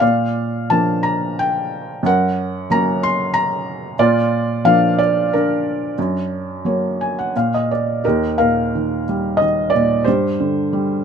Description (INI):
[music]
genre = classical, lyrical solo piano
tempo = 84-94 BPM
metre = 3/4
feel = rubato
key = Bb major, Eb major from 8.0 s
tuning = A4 = 439 Hz
[part]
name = felt-muted upright piano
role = solo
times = 0.0-11.0 s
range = Eb2 to C6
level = -16 LUFS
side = equal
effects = none
[sound]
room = moderate studio reverb, RT60 0.6 s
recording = minimal, uncompressed stereo recording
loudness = -16 LUFS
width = side -7 dB against mid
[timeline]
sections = 0.0-8.0 A section; 8.0-11.0 B section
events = felt piano fill 6.6-8.0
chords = 0.0 Bb; 2.0 Gb; 4.0 Bb; 6.0 Gb; 7.3 N.C.; 8.0 Eb; 10.1 Gsus4